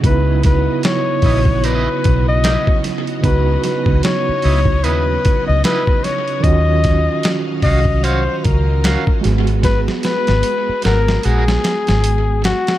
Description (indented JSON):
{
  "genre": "R&B, neo-soul",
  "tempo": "75 BPM",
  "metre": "4/4",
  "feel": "swing 59% on 16ths",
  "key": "unclear",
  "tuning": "A4 = 440 Hz",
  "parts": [
    { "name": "overdriven tine electric piano", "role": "accompaniment", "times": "0.0-12.8 s", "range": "C#3 to G#4", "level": "-22 LUFS", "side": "right 7 dB", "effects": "medium tremolo, tape echo" },
    { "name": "string machine, violins", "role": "sustained chords", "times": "0.0-12.8 s", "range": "F#3 to E#5", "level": "-28 LUFS", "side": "equal", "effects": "ensemble chorus" },
    { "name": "vintage muted fingered electric bass", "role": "bass", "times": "0.0-12.5 s", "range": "G#1 to D#2", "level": "-16 LUFS", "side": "equal", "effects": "none" },
    { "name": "boom bap sampler-style drum kit", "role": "drums", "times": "0.0-12.8 s", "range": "hi-hat, kick drum, snare drum", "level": "-18 LUFS", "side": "equal", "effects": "tape echo" },
    { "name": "warm flugelhorn", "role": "melody", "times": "0.1-12.8 s", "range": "F#4 to D#5", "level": "-19 LUFS", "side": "left 4 dB", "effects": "tape echo" },
    { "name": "electric guitar at the edge of break-up", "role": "second line", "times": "1.2-11.4 s", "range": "B3 to E#5", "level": "-26 LUFS", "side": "right 4 dB", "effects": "tremolo" }
  ],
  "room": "light reverb, digital ambience",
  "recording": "echo-heavy mix",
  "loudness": "-13 LUFS",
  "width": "side -14 dB against mid",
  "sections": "0.0-12.8 A section",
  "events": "drum fill 9.6-12.8",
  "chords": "0.0 C#m9; 6.4 D#m9; 9.2 G#m9"
}